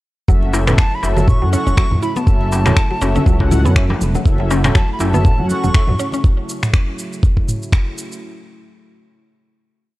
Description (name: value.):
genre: afro house.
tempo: 121 BPM.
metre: 4/4.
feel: swing 56% on 16ths.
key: F# minor.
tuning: A4 = 439 Hz.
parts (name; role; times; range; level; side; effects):
warm analog pad; sustained chords; 0.3-8.2 s; C#3 to E4; -28 LUFS; equal; chorus, sidechain pumping.
mallet-like synth pluck; arpeggios; 0.3-6.2 s; F#3 to E4; -24 LUFS; left 1 dB; chorus, phaser, vintage 12-bit sampler grit, sidechain pumping, tape echo.
mellow synth brass; stabs; 0.3-5.8 s; C#4 to F#5; -24 LUFS; left 2 dB; chorus, sidechain pumping, tape echo.
smooth gliding synth bass; bass; 0.3-5.9 s; E1 to F#2; -17 LUFS; equal; sidechain pumping.
afro-pop drum kit; drums; 0.3-8.2 s; finger snaps, shaker, toms; -23 LUFS; equal; studio ambience.
electronic kick drum; drums; 0.3-7.8 s; none; -14 LUFS; equal; studio ambience.
congas; percussion; 0.3-6.2 s; none; -25 LUFS; right 2 dB; none.
darbuka; percussion; 0.5-5.1 s; none; -25 LUFS; left 2 dB; none.
bright silver concert flute; melody; 0.8-6.2 s; A5 to C#6; -25 LUFS; equal; tape echo.
room: digital ambience.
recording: dry, gritty hardware recording, cassette tape.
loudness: -13 LUFS.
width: side -18 dB against mid.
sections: 0.3-8.2 drop.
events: drop 0.3-8.2.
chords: 0.3 F#m7.